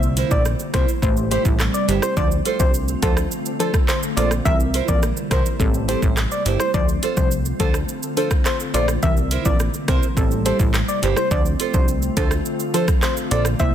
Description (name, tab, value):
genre	dancehall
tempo	105 BPM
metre	4/4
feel	straight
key	D minor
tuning	A4 = 440 Hz
part	deep mellow chord stab	accompaniment	0.0-13.7 s	E3 to C5	-26 LUFS	left 1 dB	chorus
part	glassy FM pad	sustained chords	0.0-13.7 s	D3 to F4	-28 LUFS	equal	ensemble chorus, built-in reverb, sidechain pumping
part	plucky analog bass	bass	0.0-13.7 s	G1 to D2	-23 LUFS	equal	none
part	afro-pop drum kit	drums	0.0-13.7 s	handclaps, hi-hat, kick drum, rim click, shaker	-21 LUFS	equal	soft clipping on snare
part	nylon-string guitar	arpeggios	0.2-13.5 s	E4 to C5	-28 LUFS	right 9 dB	none
part	soft struck synth lead	melody	0.3-13.7 s	A4 to E5	-25 LUFS	left 2 dB	chorus, ping-pong delay
room	light reverb, digital ambience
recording	dense, heavily limited modern master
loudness	-17 LUFS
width	side -10 dB against mid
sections	0.0-13.7 A section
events	none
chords	0.0 C7; 1.0 Am7; 2.2 Dm7; 4.5 C7; 5.6 Am7; 6.7 Dm7; 9.0 C7; 10.2 Am7; 11.3 Dm7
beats	0.46 1.03 1.60 | 2.17 2.74 3.31 3.88 | 4.46 5.03 5.60 6.17 | 6.74 7.31 7.88 8.46 | 9.03 9.60 10.17 10.74 | 11.31 11.88 12.46 13.03 | 13.60